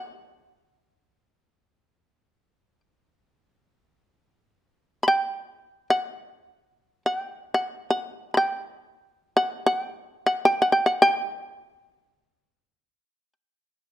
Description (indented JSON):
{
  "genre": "japanese traditional, Japanese chamber music",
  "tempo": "free time",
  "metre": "none",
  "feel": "none",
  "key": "unclear",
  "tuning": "A4 = 440 Hz",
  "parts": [
    { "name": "shamisen", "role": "solo", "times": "0.0-13.3 s", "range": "F#5 to B5", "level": "-20 LUFS", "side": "equal", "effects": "none" }
  ],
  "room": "light reverb",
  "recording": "close, detailed microphones",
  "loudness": "-22 LUFS",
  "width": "side -14 dB against mid",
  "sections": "0.0-13.9 A section",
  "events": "slowing down 11.3-13.9",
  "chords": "none"
}